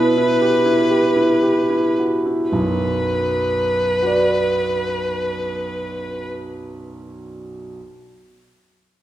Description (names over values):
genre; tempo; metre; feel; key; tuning
classical, romantic duo for violin and grand piano; 35-43 BPM (dotted quarters); 6/8; rubato; B minor; A4 = 440 Hz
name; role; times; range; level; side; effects
clear violin; melody; 0.0-6.3 s; B4; -20 LUFS; equal; none
bright concert grand piano; accompaniment; 0.0-7.8 s; B1 to D5; -20 LUFS; right 1 dB; none
room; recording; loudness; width
wet recital hall reverb, RT60 1.6 s; heard from further back in the room; -16 LUFS; side -13 dB against mid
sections
0.0-2.5 A section; 2.5-5.5 B section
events
slowing down 0.0-2.5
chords
0.0 Em/B; 2.5 Bm